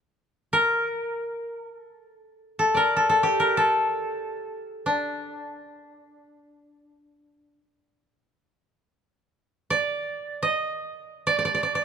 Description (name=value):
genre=japanese traditional, Japanese chamber music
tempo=free time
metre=none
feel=none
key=D miyako bushi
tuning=A4 = 439 Hz
part: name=koto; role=solo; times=0.5-11.8 s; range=D4 to Eb5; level=-23 LUFS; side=equal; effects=none
room=light reverb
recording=close, detailed microphones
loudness=-22 LUFS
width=side -7 dB against mid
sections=0.0-8.7 A section; 8.7-11.8 A section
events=none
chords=none